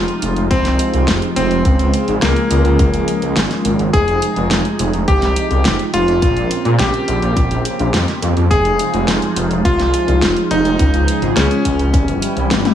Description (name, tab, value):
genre	synthwave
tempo	105 BPM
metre	4/4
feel	straight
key	F minor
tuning	A4 = 440 Hz
part	bright electric grand piano	melody	0.0-12.7 s	Bb3 to Ab4	-19 LUFS	left 1 dB	tape echo
part	phased analog pad	sustained chords	0.0-12.7 s	C3 to Ab4	-20 LUFS	right 1 dB	phaser, chorus, sidechain pumping
part	wide detuned saw bass	bass	0.0-12.6 s	F1 to Bb2	-17 LUFS	equal	chorus, sidechain pumping
part	pop drum kit	drums	0.1-12.7 s	hi-hat, snare drum, toms	-20 LUFS	equal	studio reverb
part	electronic kick drum	drums	0.5-12.1 s	none	-17 LUFS	equal	studio reverb
room	light reverb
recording	small room ambience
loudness	-13 LUFS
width	side -10 dB against mid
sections	0.0-12.7 A section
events	drum fill 12.5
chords	0.0 Fm7; 1.7 Db; 3.9 Fm7; 6.2 Bbmadd9; 8.5 Fm7; 10.8 Db; 11.9 C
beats	0.51 1.08 | 1.65 2.22 2.79 3.37 | 3.94 4.51 5.08 5.65 | 6.22 6.79 7.37 7.94 | 8.51 9.08 9.65 10.22 | 10.79 11.37 11.94 12.51